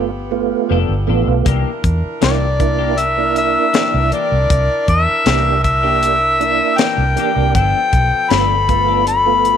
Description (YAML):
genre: straight-eighth soul blues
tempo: 79 BPM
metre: 4/4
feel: straight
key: unclear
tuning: A4 = 440 Hz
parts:
  - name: tonewheel organ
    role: accompaniment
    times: 0.0-9.6 s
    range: A3 to G4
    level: -21 LUFS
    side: right 14 dB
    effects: slow rotary speaker, overdrive, chorus vibrato
  - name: clear horn section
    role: sustained chords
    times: 0.0-9.6 s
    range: F3 to Bb4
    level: -26 LUFS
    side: right 2 dB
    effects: none
  - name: vintage muted fingered electric bass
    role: bass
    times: 0.0-9.6 s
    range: F1 to E2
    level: -18 LUFS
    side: equal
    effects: none
  - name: clean electric guitar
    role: stabs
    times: 0.7-9.1 s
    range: E3 to A4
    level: -26 LUFS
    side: left 12 dB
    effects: analog chorus
  - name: tight funk drum kit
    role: drums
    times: 1.5-9.6 s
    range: hi-hat, kick drum, snare drum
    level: -18 LUFS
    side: left 3 dB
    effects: none
  - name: mellow harmonica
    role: melody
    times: 2.2-9.6 s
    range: D5 to B5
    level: -15 LUFS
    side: left 3 dB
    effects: overdrive
room: light reverb, small room ambience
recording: 1960s-style stereo with parts hard left and right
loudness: -13 LUFS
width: side -8 dB against mid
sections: 0.0-9.6 A section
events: none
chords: 0.0 G9; 1.5 C9; 7.5 G9